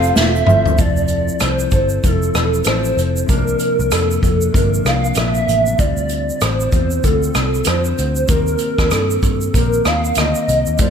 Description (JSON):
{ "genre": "indie pop, bedroom pop", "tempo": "96 BPM", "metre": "4/4", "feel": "swing 60% on 16ths", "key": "F major", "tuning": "A4 = 440 Hz", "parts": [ { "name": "hollow clarinet-like synth lead", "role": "melody", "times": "0.0-10.9 s", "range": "A4 to F5", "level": "-19 LUFS", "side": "right 1 dB", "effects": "ensemble chorus" }, { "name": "dark upright piano", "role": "accompaniment", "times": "0.0-0.8, 10.8-10.9 s", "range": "A3 to C5", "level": "-25 LUFS", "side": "right 1 dB", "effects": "none" }, { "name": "mellow electric guitar", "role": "accompaniment", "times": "0.0-10.9 s", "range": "C3 to A4", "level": "-23 LUFS", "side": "left 5 dB", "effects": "lush chorus, warbly pitch drift" }, { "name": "phased analog pad", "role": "sustained chords", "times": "0.0-0.8 s", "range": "none", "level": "barely audible", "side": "none", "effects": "none" }, { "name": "vintage muted picked electric bass", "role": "bass", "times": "0.0-10.9 s", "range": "E1 to G2", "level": "-19 LUFS", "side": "equal", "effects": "none" }, { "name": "unplugged drum kit", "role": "drums", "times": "0.0-10.9 s", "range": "hi-hat, kick drum, rim click, shaker, snare drum, toms", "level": "-18 LUFS", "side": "equal", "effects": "none" }, { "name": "egg shaker", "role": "percussion", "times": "0.1-0.8 s", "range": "none", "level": "-35 LUFS", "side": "right 10 dB", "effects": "none" } ], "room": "light reverb", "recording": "none", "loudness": "-14 LUFS", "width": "side -7 dB against mid", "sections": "0.8-10.9 A section", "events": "drum fill 0.2-0.8", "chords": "0.0 Fmaj7; 3.3 C9sus4; 5.8 Dm11; 8.3 Eb6", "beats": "0.17 | 0.79 1.42 2.04 2.67 | 3.29 3.92 4.54 5.17 | 5.79 6.42 7.04 7.67 | 8.29 8.92 9.54 10.17 | 10.79" }